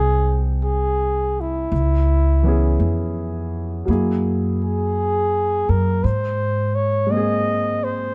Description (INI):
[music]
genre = jazz ballad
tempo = 56 BPM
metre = 4/4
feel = swing 68% on 8ths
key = unclear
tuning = A4 = 439 Hz
[part]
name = breathy flugelhorn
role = melody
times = 0.0-8.1 s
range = E4 to Eb5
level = -25 LUFS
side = equal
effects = none
[part]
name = warm concert grand piano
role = accompaniment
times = 0.0-8.1 s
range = Fb3 to G5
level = -28 LUFS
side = equal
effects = none
[part]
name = upright bass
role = bass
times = 0.0-8.1 s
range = C2 to Ab2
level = -23 LUFS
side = equal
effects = none
[sound]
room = little or no reverb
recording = none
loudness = -20 LUFS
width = mono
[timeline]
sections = 0.0-8.1 A section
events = none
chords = 0.0 Fm7; 1.7 Dbm7; 3.9 Gb9; 6.0 Abadd9